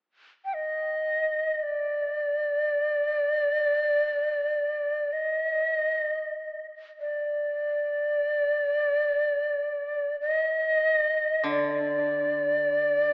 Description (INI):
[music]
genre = japanese traditional, Japanese chamber music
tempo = free time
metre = none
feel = none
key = unclear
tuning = A4 = 440 Hz
[part]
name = bright reedy shakuhachi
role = melody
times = 0.4-13.1 s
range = D5 to G5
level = -24 LUFS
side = equal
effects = none
[part]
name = koto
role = accompaniment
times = 11.4-13.1 s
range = D3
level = -32 LUFS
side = equal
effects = none
[sound]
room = wet church reverb, RT60 3.1 s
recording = AM radio sound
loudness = -24 LUFS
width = side -34 dB against mid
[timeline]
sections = 0.0-13.1 A section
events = none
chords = none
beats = free time